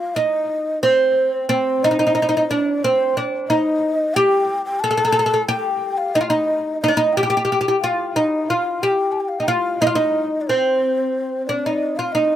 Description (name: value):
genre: Turkish makam ensemble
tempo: 90 BPM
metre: 4/4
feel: straight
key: unclear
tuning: A4 = 440 Hz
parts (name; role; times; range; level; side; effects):
- oud; melody; 0.0-12.4 s; C4 to A4-30c; -18 LUFS; right 1 dB; slapback echo
- breathy mellow low ney; second line; 0.0-12.4 s; C5 to A5-29c; -24 LUFS; left 2 dB; none
room: light reverb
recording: recorded outdoors, with no room sound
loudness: -17 LUFS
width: side -11 dB against mid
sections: 0.0-12.4 A section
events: none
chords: none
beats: 0.16 0.83 | 1.50 2.16 2.83 3.49 | 4.16 4.82 5.49 6.15 | 6.82 7.48 8.15 8.81 | 9.48 10.14 10.81 11.47 | 12.13